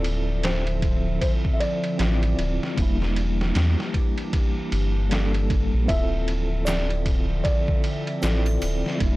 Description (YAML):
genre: trip hop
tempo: 77 BPM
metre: 4/4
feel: swing 60% on 16ths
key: D minor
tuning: A4 = 439 Hz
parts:
  - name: felt-muted upright piano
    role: melody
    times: 0.0-8.8 s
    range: A4 to E5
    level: -31 LUFS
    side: equal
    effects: dub echo
  - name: tine electric piano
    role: accompaniment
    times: 0.0-9.2 s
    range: G3 to D5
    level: -30 LUFS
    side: equal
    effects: medium stereo tremolo
  - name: warbly tape-like pad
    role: sustained chords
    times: 0.0-9.2 s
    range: D3 to E5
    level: -32 LUFS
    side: equal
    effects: chorus, built-in reverb
  - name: round analog bass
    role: bass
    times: 0.0-9.2 s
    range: D1 to E2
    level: -24 LUFS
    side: equal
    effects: none
  - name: trip hop sampler-style drum kit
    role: drums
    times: 0.0-9.2 s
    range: kick drum, ride cymbal, snare drum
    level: -25 LUFS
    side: equal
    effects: none
  - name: egg shaker and triangle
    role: percussion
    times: 6.7-8.8 s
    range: none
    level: -41 LUFS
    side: equal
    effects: none
room: digital ambience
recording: dry, gritty hardware recording, transformer saturation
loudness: -21 LUFS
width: side -19 dB against mid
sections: 0.0-9.2 A section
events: none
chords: 0.0 Dm9; 2.8 Em7b5; 5.9 Dm9